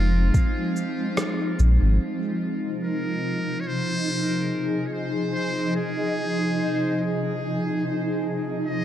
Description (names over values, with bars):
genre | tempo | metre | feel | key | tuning
ambient dub | 72 BPM | 4/4 | swing 53% on 16ths | F minor | A4 = 440 Hz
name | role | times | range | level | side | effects
trumpet with metal mute | melody | 0.0-8.8 s | F4 to Eb5 | -31 LUFS | equal | dub echo
granular cloud pad | sustained chords | 0.0-8.8 s | C3 to Ab4 | -26 LUFS | equal | built-in reverb, vintage 12-bit sampler grit
soft dub sub bass | bass | 0.0-2.0 s | F1 to Bb1 | -18 LUFS | equal | none
electronic cabasa and rim click | drums | 0.3-1.8 s | none | -29 LUFS | equal | overdrive
electronic kick drum | drums | 0.3-0.5 s | none | -20 LUFS | equal | overdrive
bubbling stepped-filter texture | texture | 2.0-8.8 s | Eb4 to Eb5 | -30 LUFS | equal | chorus, built-in reverb
room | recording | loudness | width
moderate spring reverb, RT60 2.4 s | echo-heavy mix | -22 LUFS | side -11 dB against mid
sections
0.0-2.0 A section; 2.0-8.8 B section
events
band accent 1.2-1.6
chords
0.0 Fm7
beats
0.34 1.18 | 2.01 2.84 3.68 4.51 | 5.34 6.18 7.01 7.84 | 8.68